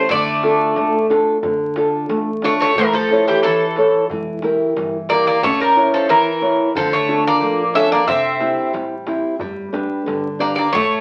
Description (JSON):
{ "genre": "greek folk, Greek bouzouki band", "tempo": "90 BPM", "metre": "2/4", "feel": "straight", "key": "D harmonic minor", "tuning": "A4 = 441 Hz", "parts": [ { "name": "Greek bouzouki", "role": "melody", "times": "0.0-11.0 s", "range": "G4 to E5", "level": "-20 LUFS", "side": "equal", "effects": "none" }, { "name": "Greek bouzouki", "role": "second line", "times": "0.0-11.0 s", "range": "E3 to C#4", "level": "-23 LUFS", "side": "equal", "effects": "none" }, { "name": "fingerpicked old ladder-braced acoustic guitar", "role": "accompaniment", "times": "0.0-11.0 s", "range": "C3 to C#5", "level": "-20 LUFS", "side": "equal", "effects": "none" }, { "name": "upright bass", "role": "bass", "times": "0.1-11.0 s", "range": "E1 to E2", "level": "-39 LUFS", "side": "equal", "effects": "none" }, { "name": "darbuka", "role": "percussion", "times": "0.1-10.9 s", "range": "none", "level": "-38 LUFS", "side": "equal", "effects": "none" } ], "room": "wet studio reverb, RT60 0.5 s", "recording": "very old 78 rpm record, vinyl crackle, nothing above 10.9 kHz", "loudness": "-17 LUFS", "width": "mono", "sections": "0.0-1.4 A section; 1.4-11.0 B section", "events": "none", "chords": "0.1 Dm; 2.8 A; 4.1 Edim; 5.4 A; 6.8 Dm; 8.1 C; 9.4 G" }